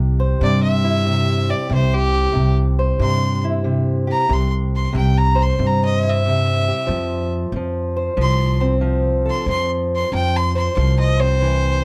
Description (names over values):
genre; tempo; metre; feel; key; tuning
acoustic country blues, solo or duo; 93 BPM; 4/4; swing 66% on 8ths; C major; A4 = 439 Hz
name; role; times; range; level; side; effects
fingerpicked acoustic archtop guitar; accompaniment; 0.0-11.8 s; C3 to C5; -24 LUFS; equal; none
upright bass; bass; 0.0-11.8 s; C2 to G2; -21 LUFS; equal; none
clear fiddle; melody; 0.4-11.8 s; G4 to C6; -25 LUFS; equal; none
room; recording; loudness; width
moderate studio reverb, RT60 0.5 s; dark, warm production; -18 LUFS; mono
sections
0.0-11.8 A section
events
fiddle solo 0.0-11.8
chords
0.0 C; 6.9 F5